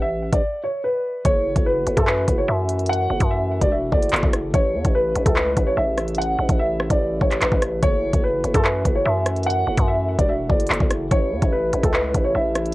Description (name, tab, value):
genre	hip hop, drill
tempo	146 BPM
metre	4/4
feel	half-time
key	F# minor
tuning	A4 = 441 Hz
part	dark concert grand piano	melody	0.0-12.7 s	A4 to F#5	-22 LUFS	equal	low-pass filter, cassette tape
part	growling 808-style bass	bass	0.0-12.7 s	E1 to F#2	-23 LUFS	equal	none
part	drill drum kit	drums	0.3-12.7 s	handclaps, hi-hat, kick drum, rim click	-20 LUFS	equal	cassette tape
part	mellow French horn section	sustained chords	1.2-12.7 s	C#3 to F#4	-30 LUFS	equal	none
room	light reverb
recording	home recording on cassette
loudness	-18 LUFS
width	side -18 dB against mid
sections	0.0-12.7 A section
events	break 0.4-1.3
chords	0.0 A5; 1.3 F#m7; 4.5 A; 7.8 F#m7; 11.1 A